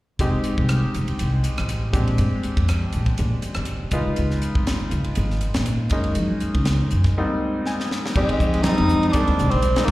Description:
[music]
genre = electric jazz fusion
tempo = 121 BPM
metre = 4/4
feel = swing 55% on 16ths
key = unclear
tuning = A4 = 435 Hz
[part]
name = bright concert grand piano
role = accompaniment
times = 0.2-9.9 s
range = Ab2 to Ab5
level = -26 LUFS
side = left 1 dB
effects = slapback echo
[part]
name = upright bass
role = bass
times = 0.2-9.9 s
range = F1 to Gb3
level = -22 LUFS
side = equal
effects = none
[part]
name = crisp fusion drum kit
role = drums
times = 0.2-9.9 s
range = crash cymbal, hi-hat, kick drum, ride cymbal, rim click, snare drum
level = -25 LUFS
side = equal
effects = none
[part]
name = breathy tenor saxophone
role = melody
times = 8.2-9.9 s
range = Ab3 to Eb4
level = -21 LUFS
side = equal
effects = slapback echo
[part]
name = congas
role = percussion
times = 8.2-9.5 s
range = none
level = -30 LUFS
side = right 2 dB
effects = none
[sound]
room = small room ambience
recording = live gig heard through the venue's PA, recital hall reverb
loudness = -19 LUFS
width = side -17 dB against mid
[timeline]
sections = 0.2-8.2 A section; 8.2-9.9 B section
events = break 7.2-8.2; grand piano fill 7.4-8.2; drum fill 7.7-8.2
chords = 0.2 Fm7; 1.9 Bb13; 3.9 Db7; 5.9 Gb69; 7.2 Abmaj9; 8.2 Fm7

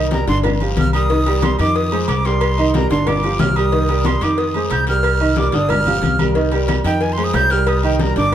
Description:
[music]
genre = latin, salsa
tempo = 183 BPM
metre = 4/4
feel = straight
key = C minor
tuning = A4 = 440 Hz
[part]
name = clear concert grand piano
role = accompaniment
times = 0.0-8.3 s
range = D3 to Eb5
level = -20 LUFS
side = right 2 dB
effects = none
[part]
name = upright bass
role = bass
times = 0.0-8.3 s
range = G1 to F2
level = -19 LUFS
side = equal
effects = none
[part]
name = breathy bright jazz flute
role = melody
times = 0.1-8.3 s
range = G5 to G6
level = -21 LUFS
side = right 1 dB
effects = none
[part]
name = congas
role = percussion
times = 0.1-8.3 s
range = none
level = -24 LUFS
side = left 4 dB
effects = none
[part]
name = cowbell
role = percussion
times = 0.1-8.3 s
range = none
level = -26 LUFS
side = left 4 dB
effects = none
[part]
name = guiro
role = percussion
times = 0.1-8.3 s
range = none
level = -34 LUFS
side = left 6 dB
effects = none
[part]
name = agogo bells and timbales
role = percussion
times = 0.4-8.3 s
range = none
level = -28 LUFS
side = right 5 dB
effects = none
[sound]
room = light reverb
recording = none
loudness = -14 LUFS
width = side -10 dB against mid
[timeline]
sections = 0.0-8.3 A section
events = flute solo 0.0-8.3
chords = 0.4 G7sus4; 1.1 Cm7; 1.8 Fm7; 2.4 Cm7; 3.1 G7sus4; 3.7 Cm7; 4.4 Fm7; 5.0 Cm7; 5.7 G7sus4; 6.4 Cm7; 7.0 Fm7; 7.7 Cm7

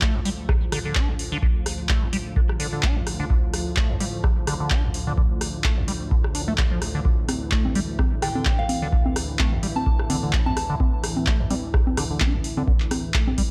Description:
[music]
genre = acid house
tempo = 128 BPM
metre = 4/4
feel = swing 56% on 16ths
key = D minor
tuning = A4 = 440 Hz
[part]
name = lush unison pad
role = sustained chords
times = 0.0-13.5 s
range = D2 to F3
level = -33 LUFS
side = equal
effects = chorus, sidechain pumping
[part]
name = liquid acid bass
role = riff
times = 0.0-13.4 s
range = D2 to D4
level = -32 LUFS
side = equal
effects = phaser, tube saturation, subtle chorus, sidechain pumping, tape echo
[part]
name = booming analog drum machine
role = drums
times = 0.0-13.5 s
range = congas, handclaps, hi-hat, rim click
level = -30 LUFS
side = equal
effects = none
[part]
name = electronic kick drum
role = drums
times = 0.0-13.5 s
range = none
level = -24 LUFS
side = equal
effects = none
[part]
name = soft synth bell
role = melody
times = 8.2-10.6 s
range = F5 to A5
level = -33 LUFS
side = equal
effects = chorus, tape echo
[sound]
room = digital ambience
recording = none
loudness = -23 LUFS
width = mono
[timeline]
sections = 0.0-13.5 A section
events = none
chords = 0.0 Dm

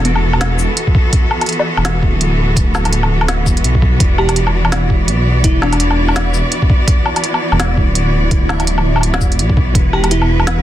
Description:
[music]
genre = half-time drum and bass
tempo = 167 BPM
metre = 4/4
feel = swing 59% on 16ths, half-time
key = unclear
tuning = A4 = 439 Hz
[part]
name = bright symphonic cello section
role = sustained chords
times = 0.0-10.6 s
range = E3 to D5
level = -20 LUFS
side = equal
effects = vintage 12-bit sampler grit, sidechain pumping
[part]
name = dark detuned saw bass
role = bass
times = 0.0-10.6 s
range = D1 to B1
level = -15 LUFS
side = equal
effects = none
[part]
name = bell-like FM electric piano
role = melody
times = 0.1-0.2, 4.2-6.1, 9.9-10.6 s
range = B3 to G4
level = -21 LUFS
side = equal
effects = chorus, digital delay
[part]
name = organic electronic drum kit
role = drums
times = 0.1-10.6 s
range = hi-hat, shaker, snare drum, woodblock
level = -18 LUFS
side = left 1 dB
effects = none
[part]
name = electronic kick drum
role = drums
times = 0.9-9.8 s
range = none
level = -14 LUFS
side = equal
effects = overdrive
[part]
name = backwards swelling texture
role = texture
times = 4.5-10.6 s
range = E4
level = -26 LUFS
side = right 3 dB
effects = built-in reverb
[sound]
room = little or no reverb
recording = dense, heavily limited modern master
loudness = -11 LUFS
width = side -12 dB against mid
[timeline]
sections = 0.0-10.6 A section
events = none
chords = 0.0 E5

